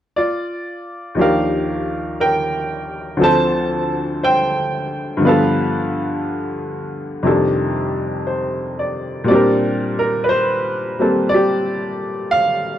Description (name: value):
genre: jazz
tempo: 59 BPM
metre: 4/4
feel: swing 68% on 8ths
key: Bb major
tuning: A4 = 438 Hz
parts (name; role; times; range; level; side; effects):
- bright upright piano; accompaniment; 0.2-12.8 s; D2 to A5; -16 LUFS; equal; none
room: moderate large studio reverb, RT60 1.1 s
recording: close, detailed microphones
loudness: -16 LUFS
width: side -11 dB against mid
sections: 0.0-1.1 A section; 1.1-9.3 B section; 9.3-12.8 C section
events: none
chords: 0.0 N.C.; 1.1 Ebmaj9; 3.2 Dm7; 5.2 G7; 7.2 F13; 9.3 Bb69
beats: 0.12 | 1.14 2.16 3.17 4.19 | 5.20 6.21 7.23 8.24 | 9.26 10.28 11.29 12.30